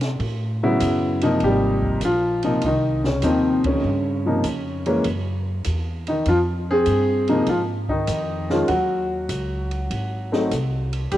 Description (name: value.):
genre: jazz piano trio.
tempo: 99 BPM.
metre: 4/4.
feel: swing 69% on 8ths.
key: Ab major.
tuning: A4 = 440 Hz.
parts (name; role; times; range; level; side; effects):
upright bass; bass; 0.0-11.2 s; Ab1 to C3; -25 LUFS; equal; none.
open jazz drum kit; drums; 0.0-11.2 s; hi-hat, kick drum, ride cymbal, snare drum; -33 LUFS; right 1 dB; cassette tape.
warm upright piano; melody; 0.6-11.2 s; C3 to Ab4; -20 LUFS; left 1 dB; cassette tape.
room: light reverb.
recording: home recording on cassette.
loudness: -19 LUFS.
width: side -13 dB against mid.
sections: 0.0-1.4 A section; 1.4-11.2 B section.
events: upright piano solo 0.0-1.4; band accent 3.5-3.8.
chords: 0.2 A69; 1.4 Abmaj7; 3.8 Gm7b5; 5.1 Gb5; 6.3 Fm9; 8.7 Ebm7; 9.9 Ab7.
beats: 0.20 0.81 | 1.41 2.02 2.63 3.23 | 3.84 4.45 5.05 5.66 | 6.27 6.88 7.48 8.09 | 8.70 9.30 9.91 10.52 | 11.12.